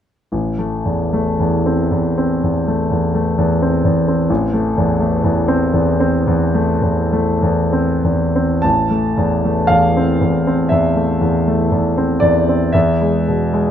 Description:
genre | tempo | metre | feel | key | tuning
classical, romantic nocturne for solo piano | 47-66 BPM | 4/4 | rubato | A minor | A4 = 440 Hz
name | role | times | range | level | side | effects
clear concert grand piano | solo | 0.3-13.7 s | A1 to A5 | -14 LUFS | equal | none
room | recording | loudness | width
light reverb | none | -14 LUFS | side -9 dB against mid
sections
0.3-8.6 A section; 8.6-13.7 B section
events
none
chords
0.3 Am; 12.7 E

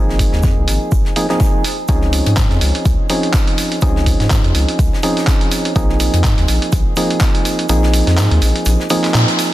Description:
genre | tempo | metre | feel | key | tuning
deep house | 124 BPM | 4/4 | swing 57% on 16ths | unclear | A4 = 439 Hz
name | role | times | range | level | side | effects
percussive organ stab | stabs | 0.0-9.5 s | F3 to Ab4 | -18 LUFS | right 1 dB | chorus, cassette tape, sidechain pumping, dub echo
round analog bass | bass | 0.0-9.2 s | Ab1 to Bb2 | -15 LUFS | equal | tube saturation, sidechain pumping
tight funk drum kit | drums | 0.1-9.5 s | hi-hat, shaker, snare drum | -30 LUFS | equal | sidechain pumping on hats, high-pass filter on hats, soft clipping on snare, high-pass filter on snare, sidechain pumping on perc, high-pass filter on perc, high-pass filter on room
dusty soul sampler-style drum kit | drums | 0.2-9.5 s | handclaps, hi-hat | -21 LUFS | right 1 dB | none
electronic kick drum | drums | 0.2-7.3 s | none | -15 LUFS | equal | overdrive
room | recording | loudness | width
light reverb | dense, heavily limited modern master | -12 LUFS | side -15 dB against mid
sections
0.0-9.5 A section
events
kick drops out 7.7-9.5; band accent 9.1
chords
0.0 Ab69; 1.6 Dbmaj9; 5.8 Bb9sus4

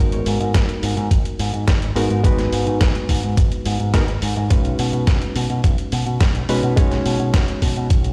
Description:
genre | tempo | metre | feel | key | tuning
nu-disco, nu disco | 106 BPM | 4/4 | straight | G# minor | A4 = 439 Hz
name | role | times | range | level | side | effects
barky reed electric piano | accompaniment | 0.0-8.1 s | G#3 to C#5 | -27 LUFS | equal | overdrive, sidechain pumping, delay
picked electric bass with an envelope filter | bass | 0.0-8.1 s | G#1 to B2 | -24 LUFS | equal | sidechain pumping
dusty soul sampler-style drum kit | drums | 0.1-8.1 s | hi-hat, snare drum | -29 LUFS | equal | overdrive
electronic kick drum | drums | 0.5-8.0 s | none | -20 LUFS | equal | overdrive
room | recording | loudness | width
light reverb, digital ambience | played on a big sound system in a bare room, stone room reverb | -19 LUFS | mono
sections
0.0-8.1 A section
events
none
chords
0.0 G#m7; 4.5 B6

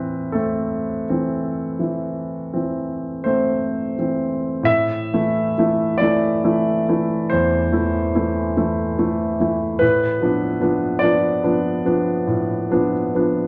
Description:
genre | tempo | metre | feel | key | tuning
classical, romantic nocturne for solo piano | 41-50 BPM | 4/4 | rubato | A minor | A4 = 441 Hz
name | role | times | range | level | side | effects
warm grand piano | solo | 0.0-13.5 s | E2 to E5 | -20 LUFS | equal | none
room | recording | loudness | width
wet large studio reverb, RT60 1.3 s | none | -20 LUFS | mono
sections
0.0-4.7 A section; 4.7-13.5 B section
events
none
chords
0.0 Am; 9.8 Bm7b5/A

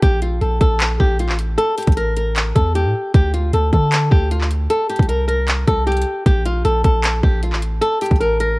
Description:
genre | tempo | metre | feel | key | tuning
hip hop, trap | 154 BPM | 4/4 | half-time | unclear | A4 = 441 Hz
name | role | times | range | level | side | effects
flamenco guitar | melody | 0.0-8.6 s | F4 to Bb4 | -19 LUFS | equal | none
long sustained 808-style bass | bass | 0.0-8.6 s | A1 to D3 | -19 LUFS | equal | none
trap drum kit | drums | 0.0-8.5 s | handclaps, hi-hat, kick drum | -16 LUFS | equal | none
room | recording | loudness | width
digital ambience | worn, warbling old tape, cassette tape, warbly pitch drift | -15 LUFS | side -22 dB against mid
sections
0.0-8.6 A section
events
none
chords
0.0 Gm9; 1.6 A5; 3.1 D5; 4.7 C5; 6.3 Gm9; 7.8 A5

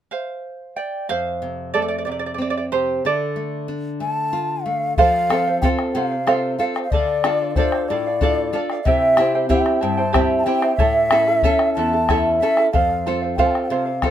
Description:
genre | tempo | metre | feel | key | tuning
andean folk, Andean ensemble | 62 BPM (dotted quarters) | 6/8 | straight | unclear | A4 = 440 Hz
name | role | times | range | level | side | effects
charango | accompaniment | 0.1-14.1 s | E4 to A5 | -22 LUFS | right 3 dB | none
nylon-string guitar | accompaniment | 1.1-14.1 s | E2 to A4 | -24 LUFS | left 2 dB | none
mellow large quena | melody | 4.0-14.1 s | C5 to A5 | -20 LUFS | equal | none
bombo | percussion | 5.0-14.1 s | none | -22 LUFS | left 3 dB | none
room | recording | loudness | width
light reverb | minimal, uncompressed stereo recording | -17 LUFS | side -10 dB against mid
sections
0.0-1.1 A section; 1.1-5.0 B section; 5.0-14.1 C section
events
charango solo 1.1-5.0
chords
0.0 F5; 1.1 F; 3.0 Dm; 5.0 F; 6.9 Dm; 8.9 C; 10.8 A; 12.7 F

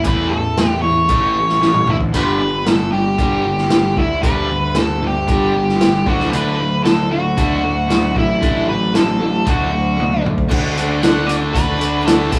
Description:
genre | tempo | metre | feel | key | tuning
classic rock | 115 BPM | 4/4 | straight | unclear | A4 = 440 Hz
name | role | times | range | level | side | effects
octave-fuzz lead guitar | melody | 0.0-12.4 s | E4 to F#5 | -22 LUFS | equal | distortion
crunchy overdriven guitar | riff | 0.0-12.4 s | G2 to F#4 | -26 LUFS | equal | none
tight distorted guitar | riff | 0.0-12.4 s | G2 to D4 | -27 LUFS | equal | distortion
fuzz picked electric bass | bass | 0.0-12.4 s | G1 to E2 | -23 LUFS | equal | overdrive
vintage drum kit | drums | 0.0-12.4 s | crash cymbal, hi-hat, kick drum, snare drum, splash cymbal, toms | -21 LUFS | equal | none
picked steel-string acoustic guitar | accompaniment | 10.5-12.4 s | D3 to F#4 | -27 LUFS | equal | none
room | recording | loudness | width
moderate studio reverb, RT60 0.7 s | band playing live in one room, small room ambience | -16 LUFS | mono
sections
0.0-10.5 A section; 10.5-12.4 B section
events
drum fill 1.6-2.1, 10.0-10.5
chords
0.0 A; 2.1 G; 6.1 D

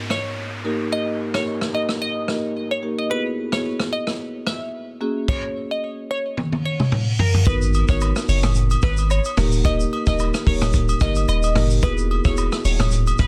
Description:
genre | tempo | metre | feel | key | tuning
afrobeats | 110 BPM | 4/4 | swing 55% on 16ths | G# minor | A4 = 438 Hz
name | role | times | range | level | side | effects
downlifter and reverse cymbal | sound effects | 0.0-7.5 s | none | -36 LUFS | equal | none
glassy wavetable pluck | melody | 0.1-13.3 s | A#4 to E5 | -29 LUFS | equal | chorus, tape echo
vintage drum kit | drums | 0.1-13.3 s | crash cymbal, hi-hat, kick drum, rim click, shaker, toms | -24 LUFS | equal | vintage 12-bit sampler grit
marimba with medium mallets | accompaniment | 0.6-12.4 s | A#3 to A#4 | -29 LUFS | equal | none
punchy sub bass | bass | 7.5-13.3 s | D#1 to G#1 | -22 LUFS | equal | none
agogo bells and woodblock | percussion | 7.5-13.2 s | none | -32 LUFS | equal | none
room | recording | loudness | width
studio reverb | dense, heavily limited modern master | -21 LUFS | mono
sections
0.0-7.5 A section; 7.5-13.3 B section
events
drum fill 6.4-7.5; reverse cymbal 6.6-7.5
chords
0.0 N.C.; 0.6 D#; 3.1 Eadd9; 5.0 F#add9; 7.5 G#m7; 9.4 D#; 11.8 Eadd9

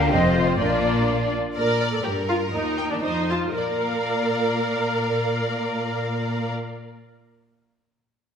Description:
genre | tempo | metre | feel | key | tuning
quick classical-period movement for symphony orchestra | 109-130 BPM | 2/4 | rubato | Bb major | A4 = 440 Hz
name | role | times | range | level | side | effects
warm studio violin section | melody | 0.0-6.5 s | F4 to A5 | -32 LUFS | left 3 dB | none
bright large flute ensemble | second line | 0.0-1.1 s | Bb4 to F5 | -26 LUFS | left 1 dB | none
rich studio violin section | second line | 0.0-6.5 s | Bb3 to D5 | -29 LUFS | left 2 dB | none
rich studio viola section | accompaniment | 0.0-6.5 s | D4 to D5 | -25 LUFS | right 1 dB | none
mellow French horn section | sustained chords | 0.0-1.3 s | A3 to F4 | -31 LUFS | left 2 dB | none
dark chamber double bass section | bass | 0.0-1.4 s | F1 to D2 | -27 LUFS | right 1 dB | none
rich studio cello section | bass | 0.0-6.5 s | Eb2 to D3 | -27 LUFS | equal | none
room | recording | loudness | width
wet scoring stage reverb, RT60 1.4 s | minimal, uncompressed stereo recording | -21 LUFS | side -7 dB against mid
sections
0.0-1.6 A section; 1.6-3.6 B section; 3.6-5.7 C section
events
slowing down 1.1-3.6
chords
0.1 F7; 0.6 Bb; 2.0 Gm7; 2.5 Eb5; 3.0 F7(no3); 3.6 Bb

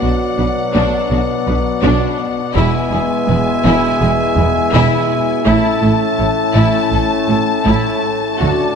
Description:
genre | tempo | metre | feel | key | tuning
cinematic | 82 BPM | 4/4 | straight | unclear | A4 = 438 Hz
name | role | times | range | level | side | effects
warm symphonic violin section | melody | 0.0-8.8 s | F#5 to A5 | -22 LUFS | left 7 dB | none
rich symphonic violin section | second line | 0.0-8.7 s | D4 to C#5 | -25 LUFS | left 5 dB | none
rich symphonic viola section | accompaniment | 0.0-8.8 s | D4 to F#4 | -23 LUFS | equal | none
dark French horn section | sustained chords | 0.0-8.8 s | B3 to F#4 | -21 LUFS | left 7 dB | none
warm trombone section | sustained chords | 0.0-8.8 s | A2 to A3 | -22 LUFS | right 2 dB | none
warm trumpet | stabs | 0.0-8.8 s | D5 to E5 | -21 LUFS | right 2 dB | none
rich symphonic double bass section | bass | 0.0-8.5 s | E1 to D2 | -19 LUFS | right 3 dB | none
warm symphonic cello section | bass | 0.0-8.5 s | E2 to D3 | -19 LUFS | right 2 dB | none
timpani | percussion | 0.0-0.7 s | B2 | -32 LUFS | equal | none
room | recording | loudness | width
moderate scoring stage reverb, RT60 2.1 s | dark, warm production | -12 LUFS | side -6 dB against mid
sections
0.0-8.8 A section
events
none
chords
0.0 Bm; 2.6 E; 5.5 A

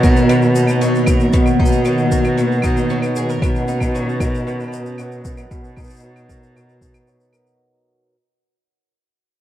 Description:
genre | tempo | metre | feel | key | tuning
folktronica | 115 BPM | 4/4 | straight | B major | A4 = 440 Hz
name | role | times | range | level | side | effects
warm analog pad | sustained chords | 0.0-7.6 s | D#3 to F#4 | -21 LUFS | right 1 dB | chorus
picked twelve-string acoustic guitar | arpeggios | 0.0-8.1 s | B2 to A#4 | -22 LUFS | equal | low-pass filter, tape echo
rich cello | bass | 0.0-7.5 s | B2 | -18 LUFS | equal | none
electronic kick drum | drums | 0.0-6.9 s | none | -18 LUFS | equal | none
shaker and claves | drums | 0.0-7.6 s | none | -32 LUFS | equal | none
room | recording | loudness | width
little or no reverb | dry, close 1970s-style studio recording | -14 LUFS | side -12 dB against mid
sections
0.0-7.6 A section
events
fade-out 0.0-7.6; filter sweep on twelve-string acoustic guitar 0.0-7.6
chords
0.0 Bmaj7

